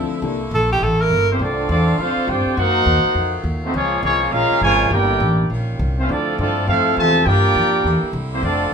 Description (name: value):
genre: jazz, big band swing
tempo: 205 BPM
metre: 4/4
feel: swing 62% on 8ths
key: F major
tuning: A4 = 438 Hz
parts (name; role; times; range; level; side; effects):
- edgy saxophone section; sustained chords; 0.0-8.7 s; Db3 to G4; -30 LUFS; left 1 dB; none
- upright bass; bass; 0.0-8.7 s; F1 to G2; -20 LUFS; equal; none
- clear tenor saxophone; melody; 0.5-1.3 s; G4 to Bb4; -17 LUFS; right 2 dB; none
- mellow trumpet section; melody; 1.3-8.7 s; A3 to A5; -18 LUFS; equal; none
- warm trombone section; second line; 1.3-8.7 s; C3 to G4; -22 LUFS; right 2 dB; none
room: moderate large studio reverb, RT60 0.9 s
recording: minimal, uncompressed stereo recording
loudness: -15 LUFS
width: side -6 dB against mid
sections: 0.0-1.4 A section; 1.4-8.7 B section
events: tenor saxophone solo 0.0-1.4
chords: 0.2 C13; 1.4 F6; 2.6 Cm7b5; 3.2 F7b9; 3.7 Bbm7; 4.9 Em7b5; 5.5 Eb9; 6.1 Dm9; 7.3 Gm7; 7.8 C9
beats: | 0.22 0.51 0.81 1.10 | 1.39 1.69 1.98 2.27 | 2.57 2.86 3.15 3.44 | 3.74 4.03 4.33 4.62 | 4.91 5.21 5.50 5.79 | 6.08 6.38 6.67 6.96 | 7.26 7.55 7.84 8.14 | 8.43 8.72